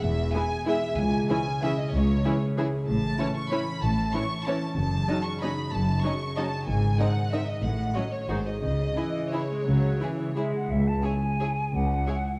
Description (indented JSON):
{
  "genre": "classical, orchestral ballroom waltz",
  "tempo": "164-205 BPM",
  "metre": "3/4",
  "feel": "rubato",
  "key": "C# minor",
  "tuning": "A4 = 438 Hz",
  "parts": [
    { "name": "rich chamber violin section", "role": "melody", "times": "0.0-12.2 s", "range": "B#4 to C#6", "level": "-35 LUFS", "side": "equal", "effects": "none" },
    { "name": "concert harp", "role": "arpeggios", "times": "0.0-12.4 s", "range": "E2 to D#5", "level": "-34 LUFS", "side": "equal", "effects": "none" },
    { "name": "rich chamber cello section", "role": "bass", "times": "0.0-12.0 s", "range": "C#2 to C#3", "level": "-32 LUFS", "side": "equal", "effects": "none" },
    { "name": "rich chamber double bass section", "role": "bass", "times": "0.0-12.0 s", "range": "E1 to C#2", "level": "-32 LUFS", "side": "equal", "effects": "none" },
    { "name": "rich chamber violin section", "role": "second line", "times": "0.3-12.2 s", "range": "D#4 to D#5", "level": "-36 LUFS", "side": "equal", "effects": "none" },
    { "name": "rich chamber viola section", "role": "accompaniment", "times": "0.3-12.2 s", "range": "D#3 to E4", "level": "-37 LUFS", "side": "equal", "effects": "none" },
    { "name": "bright small flute group", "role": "second line", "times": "10.4-12.4 s", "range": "E5 to A5", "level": "-34 LUFS", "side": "equal", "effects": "none" }
  ],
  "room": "wet scoring stage reverb, RT60 2.0 s",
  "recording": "dark, warm production",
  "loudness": "-27 LUFS",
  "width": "mono",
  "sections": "0.0-10.7 A section; 10.7-12.4 B section",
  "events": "none",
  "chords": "0.0 E; 1.0 C#m; 2.9 A; 4.8 D#m7b5/F#; 6.7 G#; 7.6 F#m/A; 8.3 G#7; 8.6 C#m",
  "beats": "| 0.03 0.35 0.68 | 0.98 1.30 1.63 | 1.94 2.25 2.57 | 2.88 3.19 3.52 | 3.83 4.14 4.47 | 4.77 5.09 5.42 | 5.73 6.04 6.37 | 6.68 7.00 7.33 | 7.64 7.95 8.30 | 8.63 8.97 9.33 | 9.68 10.01 10.37 | 10.71 11.05 11.41 | 11.74 12.08"
}